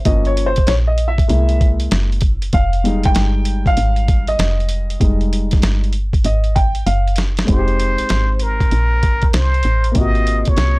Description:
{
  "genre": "hip hop, jazz-hop",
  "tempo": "97 BPM",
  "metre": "4/4",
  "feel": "swing 66% on 16ths",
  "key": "F minor",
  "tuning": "A4 = 440 Hz",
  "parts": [
    { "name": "dark upright piano", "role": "accompaniment", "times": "0.0-10.8 s", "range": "C3 to G5", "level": "-21 LUFS", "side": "left 1 dB", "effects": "none" },
    { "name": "woody FM bass", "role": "bass", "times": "0.0-10.8 s", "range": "F1 to C2", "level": "-17 LUFS", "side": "equal", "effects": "none" },
    { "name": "boom bap sampler-style drum kit", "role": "drums", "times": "0.1-10.8 s", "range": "hi-hat, kick drum, snare drum", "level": "-17 LUFS", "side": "equal", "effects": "none" },
    { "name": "trumpet with plunger mute", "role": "melody", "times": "7.5-10.8 s", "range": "Bb4 to Eb5", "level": "-20 LUFS", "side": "equal", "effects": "tape echo" }
  ],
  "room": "little or no reverb",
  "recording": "dry, gritty hardware recording, transformer saturation",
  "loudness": "-14 LUFS",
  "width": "side -22 dB against mid",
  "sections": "0.0-7.5 A section; 7.5-10.8 B section",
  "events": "upright piano solo 0.0-7.5; drum fill 6.9-7.5",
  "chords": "0.1 Gm7b5; 1.3 Caug7; 2.5 Fm9; 10.0 Ab13",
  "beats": "| 0.06 0.68 1.29 1.91 | 2.53 3.15 3.77 4.39 | 5.01 5.62 6.24 6.86 | 7.48 8.10 8.72 9.34 | 9.96 10.57"
}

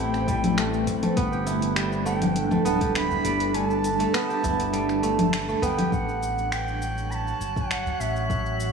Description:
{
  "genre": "organic downtempo",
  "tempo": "101 BPM",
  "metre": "4/4",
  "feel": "straight",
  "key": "A dorian",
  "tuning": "A4 = 440 Hz",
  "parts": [
    { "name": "bright reedy bansuri", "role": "melody", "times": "0.0-8.7 s", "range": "E5 to B5", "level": "-30 LUFS", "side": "right 2 dB", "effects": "analog delay" },
    { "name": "granular cloud pad", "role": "sustained chords", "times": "0.0-5.9 s", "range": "G3 to C5", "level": "-28 LUFS", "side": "equal", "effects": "built-in reverb, wide subtle chorus, sidechain pumping" },
    { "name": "kora", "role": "arpeggios", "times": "0.0-7.5 s", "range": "G3 to G4", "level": "-28 LUFS", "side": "right 2 dB", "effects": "diffuse ambient delay" },
    { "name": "smooth gliding synth bass", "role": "bass", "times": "0.0-8.7 s", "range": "D1 to A1", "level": "-30 LUFS", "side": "equal", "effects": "sidechain pumping" },
    { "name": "afro-pop drum kit", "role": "drums", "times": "0.1-8.7 s", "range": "congas, finger snaps, hi-hat, shaker", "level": "-29 LUFS", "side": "left 2 dB", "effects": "none" },
    { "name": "electronic kick drum", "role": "drums", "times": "0.3-8.4 s", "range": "none", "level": "-30 LUFS", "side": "equal", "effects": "none" },
    { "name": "udu", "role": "percussion", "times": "0.9-8.0 s", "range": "none", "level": "-35 LUFS", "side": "right 2 dB", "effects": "none" },
    { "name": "drifting glass-harmonics texture", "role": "texture", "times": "6.6-8.7 s", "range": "F#3 to F#6", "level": "-34 LUFS", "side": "left 1 dB", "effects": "chorus, built-in reverb" }
  ],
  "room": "wet plate reverb, RT60 2.6 s",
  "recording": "dreamy mix soaked in reverb",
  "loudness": "-22 LUFS",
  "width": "side -5 dB against mid",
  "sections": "0.0-5.9 A section; 5.9-8.7 B section",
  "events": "kick drops out 3.5-5.9",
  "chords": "0.0 Am9; 1.2 Gadd9; 5.9 A5",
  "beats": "0.58 | 1.17 1.76 2.36 2.95 | 3.55 4.14 4.74 5.33 | 5.92 6.52 7.11 7.71 | 8.30"
}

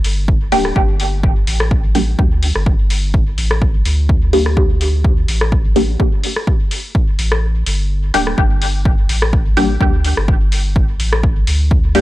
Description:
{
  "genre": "dub techno",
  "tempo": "126 BPM",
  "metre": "4/4",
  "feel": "swing 54% on 16ths",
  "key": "G minor",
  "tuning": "A4 = 439 Hz",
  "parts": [
    { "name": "soft dub sub bass", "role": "bass", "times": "0.0-12.0 s", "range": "D1 to D2", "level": "-17 LUFS", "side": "equal", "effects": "sidechain pumping" },
    { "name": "soft vintage rhythm box", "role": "drums", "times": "0.0-12.0 s", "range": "hi-hat, rim click", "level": "-22 LUFS", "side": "left 1 dB", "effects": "none" },
    { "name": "electronic kick drum", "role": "drums", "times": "0.3-11.8 s", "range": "none", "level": "-15 LUFS", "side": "equal", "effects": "none" },
    { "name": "filtered dub chord stab", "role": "stabs", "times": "0.5-12.0 s", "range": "G3 to G4", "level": "-18 LUFS", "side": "equal", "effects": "phaser, sidechain pumping, dub echo" }
  ],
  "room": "digital ambience",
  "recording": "dry, gritty hardware recording, transformer saturation",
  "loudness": "-13 LUFS",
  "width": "side -16 dB against mid",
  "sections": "0.0-12.0 A section",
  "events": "kick drops out 7.4-8.4",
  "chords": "0.0 Gm",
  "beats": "0.28 | 0.76 1.24 1.71 2.19 | 2.66 3.14 3.62 4.09 | 4.57 5.04 5.52 6.00 | 6.47 6.95 7.43 7.90 | 8.38 8.85 9.33 9.81 | 10.28 10.76 11.23 11.71"
}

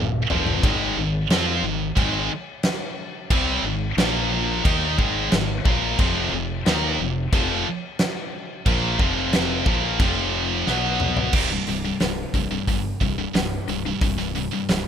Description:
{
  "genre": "heavy metal",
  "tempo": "90 BPM",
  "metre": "4/4",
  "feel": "straight",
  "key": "C minor",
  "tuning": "A4 = 437 Hz",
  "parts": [
    { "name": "scooped high-gain guitar", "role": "riff", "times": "0.0-14.9 s", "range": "C2 to F4", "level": "-24 LUFS", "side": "right 11 dB", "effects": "distortion" },
    { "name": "tight distorted guitar", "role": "riff", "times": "0.0-14.9 s", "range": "C2 to F4", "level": "-26 LUFS", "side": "left 12 dB", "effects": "distortion" },
    { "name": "growling fingered electric bass", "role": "bass", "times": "0.0-14.9 s", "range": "C1 to F2", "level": "-29 LUFS", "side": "equal", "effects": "overdrive" },
    { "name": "big rock drum kit", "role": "drums", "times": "0.3-14.8 s", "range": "crash cymbal, hi-hat, kick drum, snare drum, toms", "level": "-24 LUFS", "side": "equal", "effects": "none" }
  ],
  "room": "studio ambience",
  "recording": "rough home demo mix",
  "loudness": "-20 LUFS",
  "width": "side -8 dB against mid",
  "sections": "0.0-11.3 A section; 11.3-14.9 B section",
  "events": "drum fill 0.0-0.6, 10.7-11.3",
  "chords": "0.0 Eb5; 0.6 Ab5; 4.0 Bb5; 4.7 Ab5; 6.0 F5; 10.7 B5; 11.3 C5",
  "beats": "| 0.64 1.31 1.98 2.64 | 3.31 3.98 4.65 5.32 | 5.99 6.66 7.33 8.00 | 8.66 9.34 10.00 10.67 | 11.34 12.01 12.68 13.35 | 14.02 14.69"
}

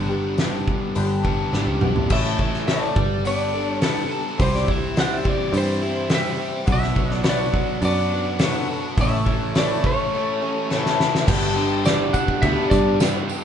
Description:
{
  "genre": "folk rock and heartland rock",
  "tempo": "105 BPM",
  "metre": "4/4",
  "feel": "straight",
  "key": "unclear",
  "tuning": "A4 = 440 Hz",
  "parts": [
    { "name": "picked twelve-string acoustic guitar", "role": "accompaniment", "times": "0.0-13.4 s", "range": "G2 to A4", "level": "-26 LUFS", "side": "left 5 dB", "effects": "none" },
    { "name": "biting overdriven guitar", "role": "riff", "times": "0.0-13.4 s", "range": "G2 to A4", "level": "-27 LUFS", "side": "right 1 dB", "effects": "none" },
    { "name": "picked electric bass", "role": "bass", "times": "0.0-13.4 s", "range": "G1 to G2", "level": "-26 LUFS", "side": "right 1 dB", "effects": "none" },
    { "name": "loose indie drum kit", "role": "drums", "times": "0.4-13.1 s", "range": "crash cymbal, hi-hat, kick drum, snare drum, toms", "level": "-23 LUFS", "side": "equal", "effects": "none" },
    { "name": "lightly driven lead guitar", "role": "melody", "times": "2.1-13.2 s", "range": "A4 to F#5", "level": "-26 LUFS", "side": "equal", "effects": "none" },
    { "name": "rich studio string section", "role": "sustained chords", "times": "2.1-13.4 s", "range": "A3 to C5", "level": "-35 LUFS", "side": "equal", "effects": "none" },
    { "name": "tambourine", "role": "percussion", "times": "11.4-13.4 s", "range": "none", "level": "-37 LUFS", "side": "right 10 dB", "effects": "none" }
  ],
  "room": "moderate large studio reverb, RT60 0.8 s",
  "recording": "band playing live in one room, nothing above 10.4 kHz",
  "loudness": "-18 LUFS",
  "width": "side -8 dB against mid",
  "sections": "0.0-2.1 A section; 2.1-11.3 B section; 11.3-13.4 C section",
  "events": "drum fill 1.5-2.1, 10.7-11.3",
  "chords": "0.0 G; 2.1 A; 3.0 Gadd9; 4.4 C; 6.7 Bm; 9.0 A; 11.3 G",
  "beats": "0.39 0.96 1.53 | 2.11 2.68 3.25 3.82 | 4.40 4.97 5.54 6.11 | 6.69 7.26 7.83 8.41 | 8.98 9.55 10.13 10.70 | 11.28 11.85 12.42 13.00"
}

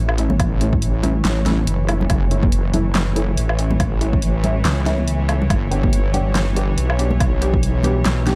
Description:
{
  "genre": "deep dubstep",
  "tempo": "141 BPM",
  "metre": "4/4",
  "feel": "swing 56% on 16ths, half-time",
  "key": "F# phrygian",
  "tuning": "A4 = 436 Hz",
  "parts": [
    { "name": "bowed-like drone", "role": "sustained chords", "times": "0.0-8.4 s", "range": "E3 to C#5", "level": "-30 LUFS", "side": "equal", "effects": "built-in reverb" },
    { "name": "filtered dub chord stab", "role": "stabs", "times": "0.0-8.4 s", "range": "A3 to G4", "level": "-29 LUFS", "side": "equal", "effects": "phaser, lush chorus, dub echo" },
    { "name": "wobble bass", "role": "bass", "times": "0.0-8.4 s", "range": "F#1 to C#2", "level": "-22 LUFS", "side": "equal", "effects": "chorus" },
    { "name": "deep house drum kit", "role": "drums", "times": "0.1-8.4 s", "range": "handclaps, hi-hat, snare drum, woodblock", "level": "-26 LUFS", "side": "equal", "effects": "overdrive" },
    { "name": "congas", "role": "percussion", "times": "0.3-8.4 s", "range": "none", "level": "-29 LUFS", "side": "equal", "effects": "none" },
    { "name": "electronic kick drum", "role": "drums", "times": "0.4-7.6 s", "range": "none", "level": "-22 LUFS", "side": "equal", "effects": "overdrive" }
  ],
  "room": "light reverb, digital ambience",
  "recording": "dark, warm production",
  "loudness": "-18 LUFS",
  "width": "mono",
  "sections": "0.0-8.4 A section",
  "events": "none",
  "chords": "0.0 F#m7; 5.5 G",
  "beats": "| 0.40 0.82 1.25 1.67 | 2.10 2.52 2.95 3.37 | 3.80 4.22 4.65 5.08 | 5.50 5.93 6.35 6.78 | 7.20 7.63 8.05"
}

